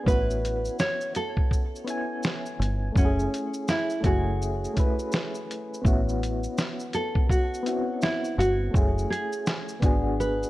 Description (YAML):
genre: lo-fi hip hop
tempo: 83 BPM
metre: 4/4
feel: swing 62% on 16ths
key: unclear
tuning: A4 = 439 Hz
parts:
  - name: nylon-string guitar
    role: melody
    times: 0.0-10.5 s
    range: C#4 to C#5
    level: -29 LUFS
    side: right 1 dB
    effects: low-pass filter
  - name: soft electric-piano-like synth keys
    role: accompaniment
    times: 0.0-10.5 s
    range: A3 to G#5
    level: -30 LUFS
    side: left 1 dB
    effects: chorus, tremolo, low-pass filter
  - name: deep dub fingered electric bass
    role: bass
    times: 0.1-10.4 s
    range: F#1 to A1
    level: -27 LUFS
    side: equal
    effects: none
  - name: lo-fi sampler-style drum kit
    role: drums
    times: 0.1-10.5 s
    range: hi-hat, kick drum, shaker, snare drum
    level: -26 LUFS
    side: equal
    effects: none
room: light reverb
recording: cassette tape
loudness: -24 LUFS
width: side -17 dB against mid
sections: 0.0-5.8 A section; 5.8-10.5 A section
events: none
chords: 0.1 A6; 3.0 F#m9; 5.8 A6; 8.7 F#m9; 9.8 G#m7b5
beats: | 0.06 0.79 1.51 2.23 | 2.96 3.68 4.40 5.12 | 5.85 6.57 7.29 8.02 | 8.74 9.46 10.18